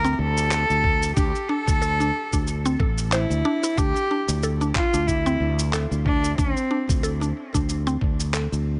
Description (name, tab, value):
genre	organic downtempo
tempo	92 BPM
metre	4/4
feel	swing 56% on 16ths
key	unclear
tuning	A4 = 438 Hz
part	rich cello	melody	0.0-7.0 s	C4 to Bb4	-28 LUFS	equal	tape echo
part	mallet-like synth pluck	arpeggios	0.0-8.5 s	C4 to C5	-31 LUFS	equal	chorus, delay
part	sustaining fretless electric bass	bass	0.0-8.8 s	A1 to D2	-27 LUFS	equal	sidechain pumping
part	electronic shaker and handclaps	drums	0.1-8.6 s	none	-32 LUFS	equal	studio reverb
part	electronic kick drum	drums	0.8-8.2 s	none	-27 LUFS	equal	studio reverb
room	little or no reverb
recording	nothing above 10.3 kHz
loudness	-23 LUFS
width	mono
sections	0.0-8.8 A section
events	none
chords	0.0 N.C.; 3.8 D5